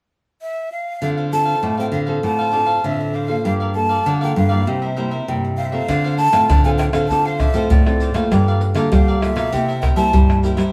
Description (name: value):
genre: samba and choro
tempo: 99 BPM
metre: 4/4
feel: straight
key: D minor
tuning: A4 = 435 Hz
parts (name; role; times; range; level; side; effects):
- breathy jazz flute; melody; 0.4-10.4 s; D5 to A5; -23 LUFS; equal; none
- cavaquinho; accompaniment; 1.0-10.7 s; D4 to F5; -30 LUFS; equal; none
- nylon-string guitar; accompaniment; 1.0-10.7 s; G2 to A4; -26 LUFS; equal; none
- nylon-string guitar; bass; 1.0-10.7 s; G2 to G3; -22 LUFS; equal; none
- tube shaker, surdo, pandeiro and tamborim; percussion; 5.9-10.7 s; none; -20 LUFS; equal; none
room: moderate stone room reverb, RT60 1.1 s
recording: band playing live in one room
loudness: -18 LUFS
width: mono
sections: 0.0-1.0 A section; 1.0-5.9 B section; 5.9-10.7 C section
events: none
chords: 0.0 N.C.; 1.0 Dm7; 3.5 Gm9; 4.7 C7; 5.9 Dm7; 8.3 Gm9; 9.5 C7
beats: 0.41 | 1.02 1.63 2.24 2.85 | 3.46 4.07 4.67 5.28 | 5.89 6.50 7.11 7.71 | 8.32 8.93 9.53 10.14